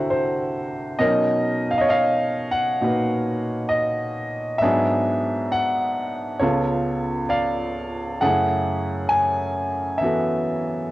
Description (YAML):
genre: jazz ballad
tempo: 67 BPM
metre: 4/4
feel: swing 66% on 8ths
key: unclear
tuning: A4 = 440 Hz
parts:
  - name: clear grand piano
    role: solo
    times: 0.0-10.9 s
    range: C2 to G#5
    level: -20 LUFS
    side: equal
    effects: cassette tape
room: moderate spring reverb, RT60 1.9 s, small room ambience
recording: home recording on cassette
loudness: -20 LUFS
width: side -16 dB against mid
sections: 0.0-10.9 A section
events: none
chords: 0.0 C9; 1.0 Bmaj7; 4.6 G#m7b5; 6.4 C#7b13; 8.2 F#m9